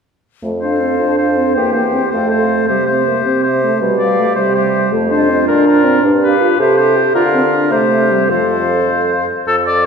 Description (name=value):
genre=quick classical-period movement for wind quintet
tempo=107 BPM (dotted quarters)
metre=6/8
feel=rubato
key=F major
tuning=A4 = 441 Hz
part: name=mellow French horn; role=accompaniment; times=0.4-8.9 s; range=F3 to A4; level=-16 LUFS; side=right 1 dB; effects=none
part: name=mellow bassoon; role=bass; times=0.4-9.9 s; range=E2 to D3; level=-17 LUFS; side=right 2 dB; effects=none
part: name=mellow hollow concert flute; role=melody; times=0.6-9.3 s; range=D5 to G5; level=-22 LUFS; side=left 8 dB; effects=none
part: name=warm oboe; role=second line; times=0.6-9.9 s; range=A4 to D5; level=-18 LUFS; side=left 3 dB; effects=none
part: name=bright clarinet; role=accompaniment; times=0.6-9.3 s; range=F4 to A4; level=-22 LUFS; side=right 5 dB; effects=none
room=wet concert hall reverb, RT60 2.5 s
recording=recorded in a church or concert hall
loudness=-11 LUFS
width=side -6 dB against mid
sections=0.4-9.5 A section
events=none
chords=0.4 F; 1.6 C/E; 2.1 F; 2.7 C; 3.8 G7/B; 4.4 C; 4.9 F5; 5.5 Bb; 6.0 G7; 6.6 C; 7.1 Bb/D; 7.7 C; 8.3 F